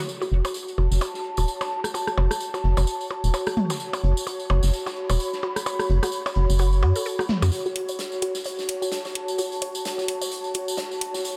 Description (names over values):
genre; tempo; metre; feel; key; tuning
minimal techno; 129 BPM; 4/4; swing 57% on 16ths; F# minor; A4 = 443 Hz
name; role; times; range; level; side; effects
airy breathy pad; texture; 0.0-11.4 s; F#4 to C#6; -31 LUFS; equal; chorus
huge arena drum kit; drums; 0.1-11.4 s; hi-hat, snare drum; -42 LUFS; equal; high-pass filter on hats, low-pass filter on hats, high-pass filter on snare, low-pass filter on snare, high-pass filter on room, low-pass filter on room
tambourine; percussion; 0.1-11.4 s; none; -37 LUFS; equal; none
resonant blip pluck; riff; 0.2-11.2 s; F#4 to C#5; -36 LUFS; equal; phaser, delay
minimal click drum kit; percussion; 0.2-7.5 s; percussion blips, rim click, toms; -31 LUFS; equal; dub echo
rubbery square bass; bass; 0.3-7.5 s; E1 to F#2; -22 LUFS; equal; none
electronic hi-hat; drums; 7.8-11.1 s; none; -32 LUFS; equal; high-pass filter on hats, high-pass filter on snare
room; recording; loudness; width
light reverb, studio reverb; none; -25 LUFS; mono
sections
0.1-7.5 A section; 7.5-11.4 B section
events
build-up 7.5-11.4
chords
0.1 F#m